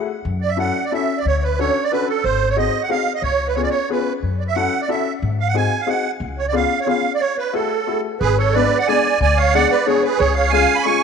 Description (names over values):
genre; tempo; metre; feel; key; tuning
musette waltz; 181 BPM; 3/4; rubato; F# minor; A4 = 440 Hz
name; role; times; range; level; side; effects
clear upright piano; accompaniment; 0.0-11.0 s; G#3 to A4; -23 LUFS; left 12 dB; none
upright bass; bass; 0.2-10.6 s; G#1 to G#2; -21 LUFS; left 2 dB; none
musette accordion; melody; 0.4-11.0 s; G#4 to C#6; -18 LUFS; right 6 dB; none
room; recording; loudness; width
moderate echo chamber reverb, RT60 2.1 s; 1960s-style stereo with parts hard left and right; -16 LUFS; side -6 dB against mid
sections
0.3-8.2 A section; 8.2-11.0 B section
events
none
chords
0.3 F#m7; 1.3 Dmaj7; 2.2 G#7; 3.2 C#7; 4.2 F#m7; 5.2 G#7; 6.2 C#7; 7.2 F#m9; 8.2 G#dim; 10.2 C#